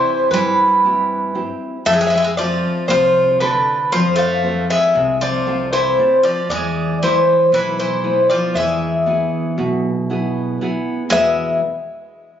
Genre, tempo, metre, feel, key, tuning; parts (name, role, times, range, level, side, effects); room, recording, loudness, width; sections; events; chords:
greek folk, Greek bouzouki band; 117 BPM (eighths); 9/8; straight; E phrygian dominant; A4 = 440 Hz
Greek bouzouki; melody; 0.0-11.6 s; B4 to F5; -16 LUFS; left 1 dB
Greek bouzouki; second line; 0.0-11.6 s; D3 to A3; -23 LUFS; right 1 dB
nylon-string guitar; accompaniment; 0.0-11.6 s; E2 to F5; -23 LUFS; equal
upright bass; bass; 0.3-11.6 s; B1 to G2; -28 LUFS; right 1 dB
light reverb; recorded on a phone in the room, club reverb, compression, nothing above 7.6 kHz; -14 LUFS; side -9 dB against mid
0.0-11.1 A section; 11.1-12.4 B section
0.0 C; 1.9 F; 6.5 E